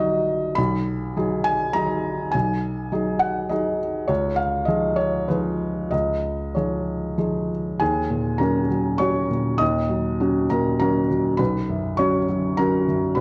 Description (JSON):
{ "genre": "neoclassical minimalist piano", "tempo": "101 BPM", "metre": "3/4", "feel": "rubato", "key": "Eb minor", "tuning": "A4 = 445 Hz", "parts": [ { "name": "felt-muted upright piano", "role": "solo", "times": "0.0-13.2 s", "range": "Bb1 to Eb6", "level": "-23 LUFS", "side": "equal", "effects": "none" } ], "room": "moderate recital hall reverb, RT60 1.4 s", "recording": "dark, warm production", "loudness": "-23 LUFS", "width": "mono", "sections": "0.0-7.8 A section; 7.8-13.2 B section", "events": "none", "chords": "0.0 Ebm/Bb; 0.6 B6; 4.1 Dbadd9; 7.8 Ebm7; 11.4 Bsus2" }